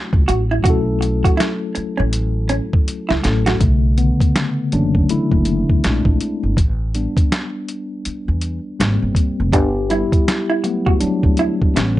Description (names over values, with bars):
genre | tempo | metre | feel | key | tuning
R&B, neo-soul | 81 BPM | 4/4 | swing 61% on 16ths | B minor | A4 = 440 Hz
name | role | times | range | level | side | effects
mellow tine electric piano | accompaniment | 0.0-12.0 s | C#3 to A4 | -20 LUFS | left 2 dB | medium stereo tremolo
upright bass | bass | 0.1-12.0 s | E#1 to E2 | -19 LUFS | equal | none
boom bap sampler-style drum kit | drums | 0.1-12.0 s | hi-hat, kick drum, snare drum | -17 LUFS | equal | none
vintage hollow-body jazz guitar | second line | 0.3-3.6, 9.5-11.8 s | C#4 to F#4 | -20 LUFS | right 4 dB | none
room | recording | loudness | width
little or no reverb | dark, warm production, nothing above 10.4 kHz | -15 LUFS | side -15 dB against mid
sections
0.0-3.6 A section; 3.6-12.0 B section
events
drum fill 2.9-3.6; tine electric piano solo 3.6-12.0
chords
0.0 F#m7; 3.6 Bm11; 5.8 A#9; 6.6 A9sus4; 8.8 G#maj9; 9.5 Gmaj9